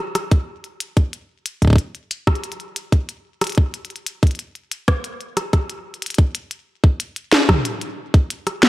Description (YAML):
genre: IDM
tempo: 92 BPM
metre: 4/4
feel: straight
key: none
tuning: none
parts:
  - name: glitchy drum kit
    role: drums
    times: 0.2-8.7 s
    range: hi-hat, rim click, snare drum, toms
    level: -20 LUFS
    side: equal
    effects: studio reverb
  - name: electronic kick drum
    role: drums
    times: 0.3-8.3 s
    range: none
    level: -13 LUFS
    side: equal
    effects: studio reverb
room: light reverb, digital ambience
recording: none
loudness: -18 LUFS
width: side -17 dB against mid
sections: 0.0-6.3 A section; 6.3-8.7 B section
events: none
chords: none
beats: 0.48 | 1.13 1.78 2.44 3.09 | 3.74 4.39 5.04 5.70 | 6.35 7.00 7.65 8.30